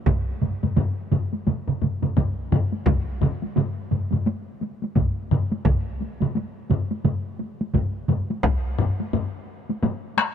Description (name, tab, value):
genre	japanese traditional, taiko drum ensemble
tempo	86 BPM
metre	4/4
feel	swing 60% on 16ths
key	none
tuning	none
part	solo taiko drums	percussion	0.1-8.3 s	none	-25 LUFS	right 5 dB	none
part	taiko ensemble	percussion	0.1-10.3 s	none	-28 LUFS	equal	none
part	taiko ensemble	percussion	0.1-10.3 s	none	-25 LUFS	left 3 dB	none
part	taiko ensemble	percussion	0.1-8.6 s	none	-25 LUFS	equal	none
room	little or no reverb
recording	none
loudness	-22 LUFS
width	side -8 dB against mid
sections	0.0-8.4 A section; 8.4-10.3 B section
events	none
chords	none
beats	| 0.07 0.77 1.47 2.17 | 2.87 3.57 4.26 4.96 | 5.66 6.35 7.05 7.74 | 8.44 9.13 9.83